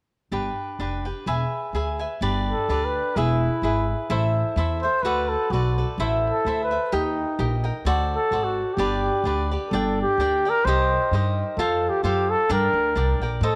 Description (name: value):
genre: mexican folk, mariachi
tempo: 128 BPM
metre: 2/4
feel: straight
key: G major, G minor from 9.7 s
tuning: A4 = 441 Hz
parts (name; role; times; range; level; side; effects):
- cavaquinho; accompaniment; 0.3-13.6 s; D4 to G#5; -29 LUFS; equal; none
- upright bass; bass; 0.3-13.6 s; E1 to A2; -28 LUFS; equal; none
- dark trumpet; melody; 2.5-13.6 s; Eb4 to C5; -26 LUFS; equal; none
room: moderate plate reverb, RT60 3.2 s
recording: none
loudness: -23 LUFS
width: mono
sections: 0.3-2.2 A section; 2.2-9.7 B section; 9.7-13.6 C section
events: none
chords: 0.3 G; 1.3 E; 2.2 G; 3.2 E; 4.1 Am; 5.0 D6; 6.0 Am; 6.9 Eb; 7.8 D7; 8.8 G; 9.7 Gm; 10.7 Cm; 11.6 F; 12.5 Gm